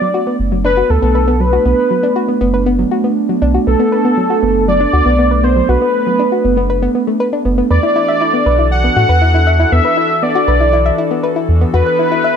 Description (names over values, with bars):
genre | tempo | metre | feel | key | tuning
IDM | 119 BPM | 4/4 | straight | B minor | A4 = 440 Hz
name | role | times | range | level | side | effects
warm velvety synth lead | melody | 0.0-12.4 s | A4 to F#5 | -15 LUFS | equal | chorus, digital delay
warbly tape-like pad | sustained chords | 0.1-12.4 s | E3 to A4 | -18 LUFS | right 3 dB | chorus, built-in reverb
soft round pluck | arpeggios | 0.0-12.3 s | F#3 to E5 | -18 LUFS | left 3 dB | chorus, digital delay
round analog bass | bass | 0.4-11.8 s | F#1 to A2 | -14 LUFS | equal | none
room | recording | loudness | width
moderate echo chamber reverb, RT60 1.3 s, digital ambience | none | -11 LUFS | side -7 dB against mid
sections
0.0-12.4 A section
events
none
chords
0.0 Bm7; 7.7 E9sus4